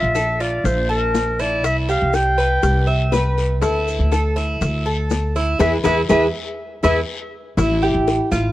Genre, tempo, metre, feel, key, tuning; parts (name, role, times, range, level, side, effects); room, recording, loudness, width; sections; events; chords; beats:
latin, Cuban son and guajira; 121 BPM; 4/4; straight; A minor; A4 = 436 Hz
clear clarinet; melody; 0.0-7.0 s; Bb4 to G5; -22 LUFS; equal; tape echo
Cuban tres; arpeggios; 0.0-8.5 s; E4 to A5; -22 LUFS; right 2 dB
upright bass; bass; 0.0-8.5 s; A1 to E2; -20 LUFS; equal
maracas; percussion; 0.1-8.5 s; -40 LUFS; right 7 dB
bongos; percussion; 0.2-8.5 s; -26 LUFS; left 5 dB
guiro; percussion; 0.2-8.5 s; -35 LUFS; left 6 dB
nylon-string guitar; second line; 2.6-8.5 s; E4 to B4; -22 LUFS; left 3 dB
light reverb; worn, warbling old tape, cassette tape, warbly pitch drift; -16 LUFS; side -15 dB against mid
0.0-7.6 A section
band accent 5.6-7.6; drum fill 6.6-7.6
0.0 Bb5; 1.6 Cmaj7; 3.6 Dsus2; 5.6 E; 7.6 A5
0.15 0.65 1.15 | 1.64 2.14 2.63 3.13 | 3.62 4.12 4.61 5.11 | 5.60 6.09 6.59 7.08 | 7.58 8.07